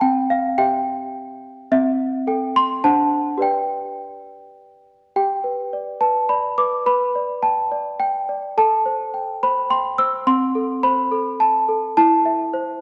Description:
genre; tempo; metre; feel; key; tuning
classical, lullaby for celesta; 106 BPM; 3/4; straight; G major; A4 = 440 Hz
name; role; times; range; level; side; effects
small celesta; solo; 0.0-12.8 s; C4 to E6; -20 LUFS; equal; none
room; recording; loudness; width
wet scoring stage reverb, RT60 1.7 s; recorded in a church or concert hall; -20 LUFS; mono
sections
0.0-5.2 A section; 5.2-12.8 B section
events
none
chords
0.0 C; 1.7 Am7/C; 2.8 D7; 3.4 G; 6.9 G/B; 8.6 Am7; 10.3 Am/C; 12.0 C/E

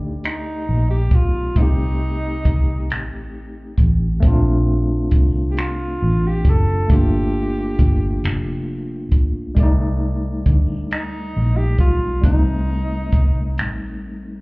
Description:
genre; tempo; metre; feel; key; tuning
slow six-eight R&B; 45 BPM (dotted quarters); 6/8; straight; C dorian; A4 = 443 Hz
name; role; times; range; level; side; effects
overdriven tine electric piano; accompaniment; 0.0-14.4 s; G3 to D5; -25 LUFS; equal; fast tremolo
vintage muted fingered electric bass; bass; 0.0-14.4 s; F1 to D2; -19 LUFS; equal; none
breathy tenor saxophone; melody; 0.2-14.0 s; Eb4 to A4; -27 LUFS; equal; none
compact cocktail drum kit; drums; 0.2-13.8 s; finger snaps, hi-hat, kick drum; -17 LUFS; equal; none
room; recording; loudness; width
studio reverb; heard muffled through a wall, club reverb, EQ; -16 LUFS; side -26 dB against mid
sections
0.0-14.4 A section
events
none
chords
0.0 Cm69 (rootless); 1.6 Am7b5; 4.2 Bbmaj9; 6.9 Gm9; 9.6 Cm69; 12.2 Am7b5

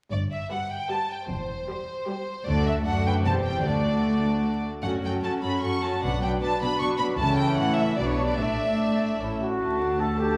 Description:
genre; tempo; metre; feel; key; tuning
quick classical-period movement for symphony orchestra; 152 BPM; 3/4; rubato; G major, D major from 4.8 s; A4 = 440 Hz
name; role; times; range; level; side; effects
clear studio violin section; melody; 0.1-10.4 s; C5 to C#6; -32 LUFS; equal; none
dark studio double bass section; bass; 0.1-10.4 s; E1 to D2; -34 LUFS; equal; none
warm studio cello section; bass; 0.1-10.4 s; D2 to C#3; -32 LUFS; equal; none
warm studio violin section; second line; 0.5-10.4 s; A3 to D5; -36 LUFS; equal; none
warm studio viola section; accompaniment; 0.5-10.4 s; E3 to G4; -32 LUFS; equal; none
warm trumpet; stabs; 9.4-10.4 s; F#4 to A4; -28 LUFS; equal; none
mellow French horn section; sustained chords; 9.6-10.4 s; A3 to A4; -34 LUFS; equal; none
room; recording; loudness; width
wet recital hall reverb, RT60 1.5 s; recorded in a church or concert hall, vinyl crackle; -26 LUFS; mono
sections
0.1-9.6 A section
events
none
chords
0.1 G; 1.3 C/E; 2.5 D; 3.2 C/E; 3.6 D; 4.8 F#m; 6.0 Bm; 7.2 A/C#; 8.0 Bm; 8.4 Asus4; 9.2 A; 9.6 D

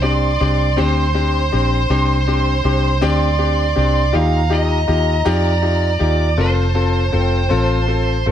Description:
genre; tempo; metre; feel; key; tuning
six-eight pop ballad; 54 BPM (dotted quarters); 6/8; straight; unclear; A4 = 444 Hz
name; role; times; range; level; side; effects
high-gain lead guitar; melody; 0.0-8.2 s; C5 to F5; -21 LUFS; right 3 dB; distortion
warm studio violin section; second line; 0.0-8.3 s; G5 to C6; -26 LUFS; right 1 dB; none
clear concert grand piano; accompaniment; 0.0-8.3 s; C4 to C5; -20 LUFS; left 5 dB; none
vintage muted fingered electric bass; bass; 0.0-8.3 s; F1 to F2; -17 LUFS; equal; none
room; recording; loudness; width
light reverb, studio reverb; dark, warm production; -14 LUFS; side -10 dB against mid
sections
0.0-8.3 A section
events
none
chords
0.0 Csus2; 4.1 Ebadd9; 6.4 F

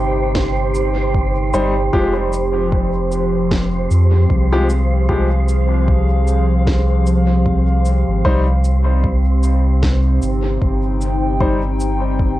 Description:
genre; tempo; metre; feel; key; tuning
ambient dub; 76 BPM; 4/4; swing 58% on 16ths; F minor; A4 = 441 Hz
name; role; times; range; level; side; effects
warbly tape-like pad; sustained chords; 0.0-12.4 s; C3 to G5; -20 LUFS; equal; chorus, built-in reverb, cassette tape
warm sub bass; bass; 0.0-12.4 s; F1 to F2; -16 LUFS; equal; none
wind-like tuned noise texture; texture; 0.0-12.4 s; C5; -27 LUFS; right 2 dB; built-in reverb, cassette tape
electronic snare drum and cabasa; drums; 0.3-12.0 s; none; -27 LUFS; equal; overdrive, cassette tape, dub echo
electronic kick drum; drums; 0.4-12.4 s; none; -20 LUFS; equal; overdrive, cassette tape
clear upright piano; stabs; 1.5-11.6 s; F3 to C5; -22 LUFS; left 2 dB; cassette tape, dub echo
room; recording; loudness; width
light reverb; home recording on cassette; -14 LUFS; side -15 dB against mid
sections
0.0-12.4 A section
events
none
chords
0.0 Cm; 1.9 Fmadd9; 8.2 Cm

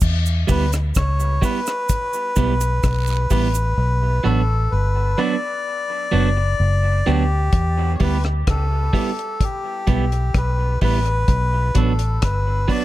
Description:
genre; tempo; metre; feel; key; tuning
dub reggae; 64 BPM; 4/4; straight; E dorian; A4 = 440 Hz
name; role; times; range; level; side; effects
vintage muted fingered electric bass; bass; 0.0-12.6 s; F#1 to E2; -19 LUFS; equal; none
deep reggae drum kit; drums; 0.0-12.8 s; crash cymbal, hi-hat, kick drum, rim click; -21 LUFS; equal; none
cabasa and guiro; percussion; 0.0-3.8 s; none; -32 LUFS; right 11 dB; none
melodica; melody; 0.5-12.8 s; G4 to D5; -24 LUFS; left 2 dB; dub echo
electric guitar at the edge of break-up; accompaniment; 0.5-12.8 s; F#3 to G4; -26 LUFS; right 7 dB; dub echo
room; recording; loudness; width
studio ambience; none; -17 LUFS; side -15 dB against mid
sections
0.0-12.8 A section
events
part muted 3.8-12.8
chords
0.0 Em; 3.8 Bm; 7.5 Em; 11.3 Bm

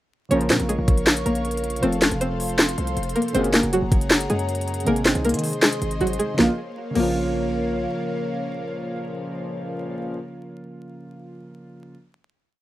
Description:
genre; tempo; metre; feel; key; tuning
hip hop, trap; 158 BPM; 4/4; half-time; Bb minor; A4 = 441 Hz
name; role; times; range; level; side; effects
string-like resonator pluck; melody; 0.3-7.5 s; Gb3 to Db5; -24 LUFS; equal; chorus, low-pass filter, digital delay
soft electric-piano-like synth keys; accompaniment; 0.3-11.9 s; C3 to Bb4; -28 LUFS; right 1 dB; chorus, low-pass filter
airy breathy pad; sustained chords; 0.7-10.0 s; Bb3 to Db6; -30 LUFS; left 1 dB; chorus
mellow brass ensemble; stabs; 0.3-0.7, 3.3-3.7, 6.4-10.2 s; Db2 to Ab3; -32 LUFS; left 3 dB; none
hard-hitting 808-style bass; bass; 0.3-7.9 s; F1 to Eb3; -28 LUFS; equal; none
trap drum kit; drums; 0.3-7.1 s; crash cymbal, handclaps, hi-hat, kick drum, snare drum; -21 LUFS; equal; overdrive
room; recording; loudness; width
moderate small room reverb, RT60 0.6 s; rough home demo mix, vinyl crackle; -20 LUFS; side -15 dB against mid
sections
0.3-6.4 hook; 6.4-9.4 final chord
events
none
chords
0.3 Bbm; 1.8 F; 3.3 Gbadd9; 4.9 Ab; 6.4 Bbm

